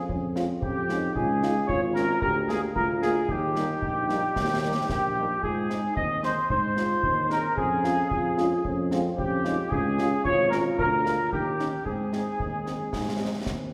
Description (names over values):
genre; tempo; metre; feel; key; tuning
military-style march for wind band; 112 BPM; 2/4; straight; Ab major; A4 = 440 Hz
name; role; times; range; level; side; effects
mellow trumpet section; melody; 0.0-13.4 s; G4 to Eb5; -29 LUFS; equal; none
warm euphonium; second line; 0.1-13.7 s; Ab3 to G4; -35 LUFS; equal; none
warm tuba; bass; 0.1-13.7 s; Ab1 to Ab2; -33 LUFS; equal; none
concert bass drum and concert snare drum; drums; 0.1-13.7 s; none; -37 LUFS; equal; none
mellow French horn section; accompaniment; 0.4-13.3 s; G3 to F4; -36 LUFS; equal; none
room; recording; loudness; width
wet scoring stage reverb, RT60 1.8 s; recorded in a church or concert hall; -26 LUFS; mono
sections
0.0-13.7 A section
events
none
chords
0.0 Db/F; 1.2 Db; 2.2 Bb7/D; 3.3 Eb; 5.4 Ab; 7.6 Db/F; 9.7 Db; 10.8 Bb7/D; 11.3 Eb7; 11.9 Ab